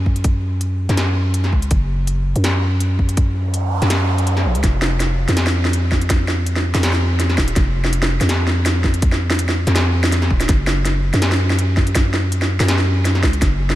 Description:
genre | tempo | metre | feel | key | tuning
half-time drum and bass | 164 BPM | 4/4 | swing 54% on 16ths, half-time | unclear | A4 = 439 Hz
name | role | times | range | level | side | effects
growling 808-style bass | bass | 0.0-13.8 s | Eb1 to Gb2 | -17 LUFS | equal | tube saturation
electronic kick drum | drums | 0.1-13.5 s | none | -17 LUFS | equal | none
industrial drum kit | drums | 0.2-13.8 s | hi-hat, snare drum | -21 LUFS | equal | overdrive
noise sweep | sound effects | 3.4-4.6 s | none | -28 LUFS | right 3 dB | none
room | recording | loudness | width
light reverb | none | -15 LUFS | side -14 dB against mid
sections
0.0-13.8 A section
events
noise sweep 3.4-4.6; kick drops out 4.3-4.6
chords
none

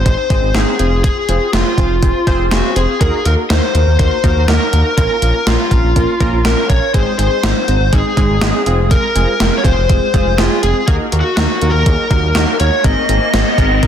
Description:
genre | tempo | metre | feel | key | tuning
synth-pop | 122 BPM | 4/4 | straight | Eb dorian | A4 = 437 Hz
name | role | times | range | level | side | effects
lead guitar through a small cranked amp | melody | 0.0-13.9 s | F4 to Eb5 | -17 LUFS | left 2 dB | overdrive
smooth synth bass | bass | 0.0-13.9 s | F1 to Eb2 | -15 LUFS | equal | none
warm analog keys | accompaniment | 0.1-13.9 s | Ab3 to C5 | -20 LUFS | right 2 dB | chorus
gated 80s digital drum machine | drums | 0.1-13.9 s | hi-hat, kick drum, snare drum | -16 LUFS | equal | gated reverb, gated reverb snare, overdrive
riser | sound effects | 11.8-13.9 s | none | -23 LUFS | equal | none
room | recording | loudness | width
light reverb, digital ambience | dense, heavily limited modern master | -11 LUFS | side -9 dB against mid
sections
0.0-13.9 A section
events
riser 11.8-13.9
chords
0.0 Ab; 0.8 Fm; 3.0 Ebm; 5.0 Bbm; 6.9 Ab; 8.7 Fm; 10.9 Ebm; 12.8 Abadd9

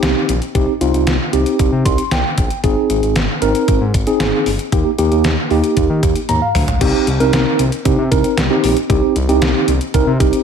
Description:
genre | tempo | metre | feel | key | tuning
synth-pop | 115 BPM | 4/4 | straight | C minor | A4 = 442 Hz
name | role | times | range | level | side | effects
mellow tine electric piano | accompaniment | 0.0-10.4 s | Bb3 to C6 | -16 LUFS | right 1 dB | medium stereo tremolo
smooth synth bass | bass | 0.0-10.3 s | G1 to Eb3 | -18 LUFS | equal | none
detuned 8-bit digital drum machine | drums | 0.0-10.4 s | crash cymbal, hi-hat, kick drum, snare drum, toms | -18 LUFS | equal | none
room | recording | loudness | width
light reverb, digital ambience | none | -13 LUFS | side -7 dB against mid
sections
0.0-6.8 A section; 6.8-10.4 B section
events
tine electric piano fill 1.6-2.6, 6.0-6.8; drum fill 6.3-6.8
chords
0.0 Cm; 2.6 Ab; 4.7 Eb; 6.8 Cm

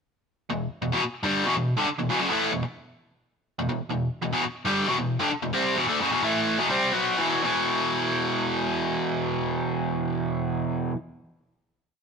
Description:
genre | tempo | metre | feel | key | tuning
rock | 120-141 BPM | 4/4 | straight | E minor | A4 = 441 Hz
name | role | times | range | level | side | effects
biting overdriven guitar | solo | 0.5-11.0 s | E2 to C4 | -23 LUFS | equal | none
room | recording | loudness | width
moderate stone room reverb, RT60 1.2 s | rough rehearsal-room recording | -23 LUFS | side -5 dB against mid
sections
0.4-7.4 riff; 7.4-11.4 final chord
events
slowing down 3.8-7.4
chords
0.4 Em; 7.4 E5

